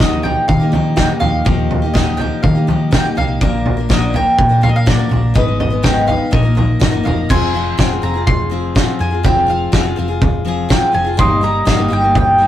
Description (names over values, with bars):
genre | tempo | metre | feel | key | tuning
indie folk with a building arrangement | 124 BPM | 4/4 | straight | Eb major | A4 = 441 Hz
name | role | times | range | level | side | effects
mandolin | melody | 0.0-12.5 s | D5 to C6 | -18 LUFS | right 1 dB | none
fingerpicked plugged-in steel-string acoustic guitar | accompaniment | 0.0-1.5 s | none | barely audible | none | none
picked steel-string acoustic guitar | accompaniment | 0.0-12.5 s | G2 to Cb5 | -19 LUFS | left 3 dB | none
hollow-body short-scale fingered electric bass | bass | 0.0-12.5 s | F1 to Eb3 | -18 LUFS | equal | none
loose indie drum kit | drums | 0.0-12.3 s | crash cymbal, kick drum, snare drum, toms | -16 LUFS | equal | none
glockenspiel with rubber mallets | second line | 7.3-12.5 s | C6 to Eb6 | -24 LUFS | right 1 dB | none
room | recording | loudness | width
moderate small room reverb, RT60 0.6 s | rough rehearsal-room recording, warm saturation | -12 LUFS | side -12 dB against mid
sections
0.0-7.3 A section; 7.3-12.5 B section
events
none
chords
0.0 Ebadd9; 3.4 Bb; 5.4 Abm; 6.3 Bbsus4; 7.3 Fm; 11.2 Eb/G